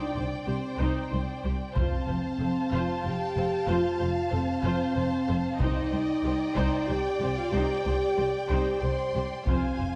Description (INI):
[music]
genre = cinematic, epic orchestral film score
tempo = 94 BPM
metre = 3/4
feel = straight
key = C minor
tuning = A4 = 440 Hz
[part]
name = rich symphonic violin section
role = melody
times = 0.0-10.0 s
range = C5 to C6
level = -44 LUFS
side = equal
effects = none
[part]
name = warm symphonic violin section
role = second line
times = 0.0-10.0 s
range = D5 to A5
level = -38 LUFS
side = equal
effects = none
[part]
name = rich symphonic viola section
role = accompaniment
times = 0.0-9.9 s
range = Eb4 to C5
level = -38 LUFS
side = equal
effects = none
[part]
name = dark French horn section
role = sustained chords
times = 0.0-10.0 s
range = C4 to C5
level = -32 LUFS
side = equal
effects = none
[part]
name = warm chamber double bass section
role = bass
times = 0.2-9.9 s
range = F1 to C2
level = -36 LUFS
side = equal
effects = none
[part]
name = warm symphonic cello section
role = bass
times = 0.2-9.9 s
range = C2 to F2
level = -36 LUFS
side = equal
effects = none
[part]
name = taiko ensemble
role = drums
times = 1.8-10.0 s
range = none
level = -32 LUFS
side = equal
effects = none
[sound]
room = wet scoring stage reverb, RT60 1.7 s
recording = dark, warm production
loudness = -28 LUFS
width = mono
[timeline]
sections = 0.0-10.0 A section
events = none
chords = 0.0 Cmadd9; 1.8 F; 5.6 Cmadd9